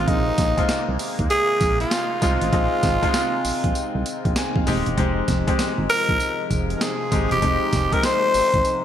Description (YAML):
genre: R&B, new jack swing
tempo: 98 BPM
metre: 4/4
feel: swing 63% on 16ths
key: unclear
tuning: A4 = 440 Hz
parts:
  - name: growling tenor saxophone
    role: melody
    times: 0.0-8.8 s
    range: Eb4 to C5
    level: -22 LUFS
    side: equal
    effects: none
  - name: clear concert grand piano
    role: accompaniment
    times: 0.0-8.8 s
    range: Ab3 to Ab5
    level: -27 LUFS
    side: left 3 dB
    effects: wide subtle chorus
  - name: sweeping resonant pad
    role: sustained chords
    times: 0.0-8.8 s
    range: C3 to Eb4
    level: -29 LUFS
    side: left 1 dB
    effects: chorus
  - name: solid FM bass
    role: bass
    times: 0.0-8.6 s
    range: Eb1 to Eb2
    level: -24 LUFS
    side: right 1 dB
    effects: none
  - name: breakbeat sampler-style drum kit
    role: drums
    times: 0.1-8.8 s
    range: hi-hat, kick drum, snare drum, tambourine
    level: -24 LUFS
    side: right 1 dB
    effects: none
room: moderate plate reverb, RT60 2.3 s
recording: bright 1980s-style digital production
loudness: -18 LUFS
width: side -10 dB against mid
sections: 0.0-8.8 A section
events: grand piano fill 4.1-5.0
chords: 0.0 Bb9sus4; 5.0 Fm7